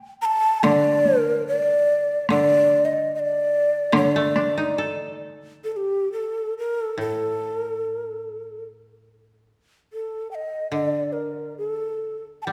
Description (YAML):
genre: japanese traditional, Japanese chamber music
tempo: 67-74 BPM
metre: 2/4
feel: rubato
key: D miyako bushi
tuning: A4 = 440 Hz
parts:
  - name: breathy mellow shakuhachi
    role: melody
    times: 0.2-12.5 s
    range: G4 to Bb5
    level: -24 LUFS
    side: equal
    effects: none
  - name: koto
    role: accompaniment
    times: 0.6-12.5 s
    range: A2 to A4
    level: -29 LUFS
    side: equal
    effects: none
  - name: solo taiko drums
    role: percussion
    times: 0.6-4.6 s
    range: none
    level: -28 LUFS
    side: equal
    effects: none
room: moderate concert hall reverb, RT60 1.8 s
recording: recorded in a church or concert hall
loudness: -23 LUFS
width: mono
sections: 0.0-5.7 A section; 5.7-12.5 B section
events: none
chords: none